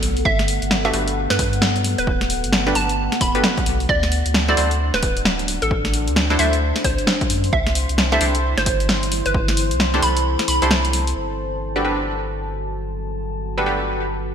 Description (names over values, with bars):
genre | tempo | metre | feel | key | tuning
UK garage, two-step garage | 132 BPM | 4/4 | swing 62% on 16ths | G major | A4 = 440 Hz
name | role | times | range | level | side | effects
hollow square pluck | melody | 0.0-11.1 s | A4 to B5 | -24 LUFS | right 2 dB | chorus, digital delay
saturated sub bass | bass | 0.0-14.3 s | D1 to G2 | -23 LUFS | equal | tube saturation, sidechain pumping
punchy analog drum machine | drums | 0.0-11.1 s | hi-hat, snare drum | -22 LUFS | equal | low-pass filter on hats, low-pass filter on snare, gated reverb
deep dark ambient pad | texture | 0.0-14.3 s | B3 to A5 | -26 LUFS | left 1 dB | chorus, built-in reverb, sidechain pumping
electronic kick drum | drums | 0.3-9.5 s | none | -23 LUFS | equal | none
punchy chord stab | stabs | 0.8-13.8 s | D4 to C5 | -24 LUFS | equal | chorus, digital delay
room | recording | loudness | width
moderate lush hall reverb, RT60 1.9 s, digital ambience | bright 1980s-style digital production | -17 LUFS | side -8 dB against mid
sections
0.0-11.2 A section; 11.2-14.3 B section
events
filter sweep on synth stab 0.0-11.2; kick drops out 10.3-11.2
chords
0.0 Gmaj9; 3.9 D7; 7.5 C6; 11.2 Gmaj9